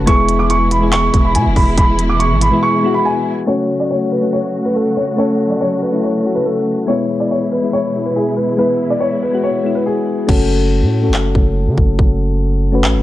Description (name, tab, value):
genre	hip hop, trap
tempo	141 BPM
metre	4/4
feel	half-time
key	F# minor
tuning	A4 = 442 Hz
part	dark concert grand piano	melody	0.0-10.3 s	G#4 to D6	-17 LUFS	equal	tape echo
part	soft electric-piano-like synth keys	accompaniment	0.0-13.0 s	G#3 to B4	-18 LUFS	left 3 dB	chorus, low-pass filter
part	dark symphonic string section	sustained chords	0.0-10.3 s	B2 to F#4	-22 LUFS	right 1 dB	none
part	long sustained 808-style bass	bass	0.0-2.5, 10.3-13.0 s	E1 to C#3	-16 LUFS	equal	none
part	trap drum kit	drums	0.1-2.5, 10.3-12.9 s	crash cymbal, handclaps, hi-hat, kick drum	-16 LUFS	equal	vintage 12-bit sampler grit
room	light reverb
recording	low-pass filter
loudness	-13 LUFS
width	side -14 dB against mid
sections	0.0-3.5 A section; 3.5-10.3 B section; 10.3-13.0 C section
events	break 2.6-3.5; filter sweep 3.5-10.3; hi-hats muted 10.3-13.0; filter sweep on synth keys 10.3-13.0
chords	0.1 E; 3.5 F#m; 6.9 E; 10.3 F#m